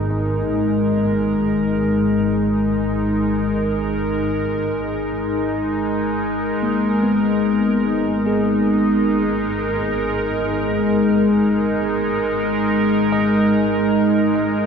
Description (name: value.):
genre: ambient.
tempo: free time.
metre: none.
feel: none.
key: G# minor.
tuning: A4 = 440 Hz.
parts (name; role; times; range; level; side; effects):
evolving wavetable pad; sustained chords; 0.0-14.7 s; G#3 to A#4; -17 LUFS; equal; chorus, built-in reverb.
tine electric piano; arpeggios; 0.0-14.7 s; A#3 to D#5; -29 LUFS; equal; phaser, ping-pong delay.
dark symphonic double bass section; bass; 0.0-14.7 s; G#1; -28 LUFS; right 1 dB; none.
room: wet lush hall reverb, RT60 2.8 s.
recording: dreamy mix soaked in reverb.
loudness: -17 LUFS.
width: side -6 dB against mid.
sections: 0.0-14.7 A section.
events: fade-in on tine electric piano 0.0-14.7; fade-out on double bass section 0.0-14.7; filter sweep on ambient pad 0.0-14.7.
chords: 0.0 G#m.